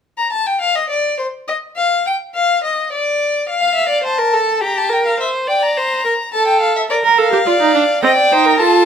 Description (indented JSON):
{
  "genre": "classical, baroque-style fugue for string quartet",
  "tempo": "105 BPM",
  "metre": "3/4",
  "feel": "straight",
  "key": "unclear",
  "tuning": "A4 = 440 Hz",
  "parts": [
    { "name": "rich violin", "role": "melody", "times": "0.2-8.9 s", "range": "C5 to Bb5", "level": "-16 LUFS", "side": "left 3 dB", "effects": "none" },
    { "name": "rich violin", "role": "second line", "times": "3.6-8.9 s", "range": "G4 to F5", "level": "-16 LUFS", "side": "right 1 dB", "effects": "none" },
    { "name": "clear viola", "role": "accompaniment", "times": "7.0-8.9 s", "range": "C4 to Bb4", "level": "-13 LUFS", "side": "right 6 dB", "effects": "none" }
  ],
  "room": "light reverb",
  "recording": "none",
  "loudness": "-13 LUFS",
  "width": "side -7 dB against mid",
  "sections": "0.0-8.9 A section",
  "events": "none",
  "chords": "0.0 N.C.; 3.5 F; 4.6 Gm7; 5.2 C7(no3); 6.3 F/A; 6.9 Bb; 8.0 Cm7"
}